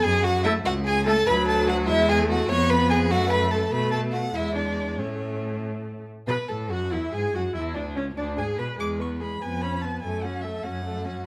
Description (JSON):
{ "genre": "quick classical-period movement for string quartet", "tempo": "97 BPM (dotted quarters)", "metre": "6/8", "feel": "straight", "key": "unclear", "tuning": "A4 = 436 Hz", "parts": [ { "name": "warm violin", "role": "melody", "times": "0.0-11.2 s", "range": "C#5 to D6", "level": "-31 LUFS", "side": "equal", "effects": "none" }, { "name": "rich violin", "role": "second line", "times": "0.0-11.3 s", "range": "C#4 to C#5", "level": "-30 LUFS", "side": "equal", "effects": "none" }, { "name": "clear cello", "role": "bass", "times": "0.0-11.2 s", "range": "C#2 to B2", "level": "-31 LUFS", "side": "equal", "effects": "none" }, { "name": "clear viola", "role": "accompaniment", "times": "0.4-11.3 s", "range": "F#3 to B4", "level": "-31 LUFS", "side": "equal", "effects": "none" } ], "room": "moderate recital hall reverb, RT60 1.4 s", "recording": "close, detailed microphones", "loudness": "-25 LUFS", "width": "mono", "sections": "0.0-6.3 A section; 6.3-11.3 A section", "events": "none", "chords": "0.0 F#m; 1.3 D6; 1.9 E; 2.5 C#7/E#; 3.1 F#m; 3.7 F#madd11/B; 4.3 E7; 5.0 A; 6.3 F#madd11; 6.9 Eadd9; 7.5 Bm; 8.8 E; 9.4 C#7/E#; 10.0 F#m" }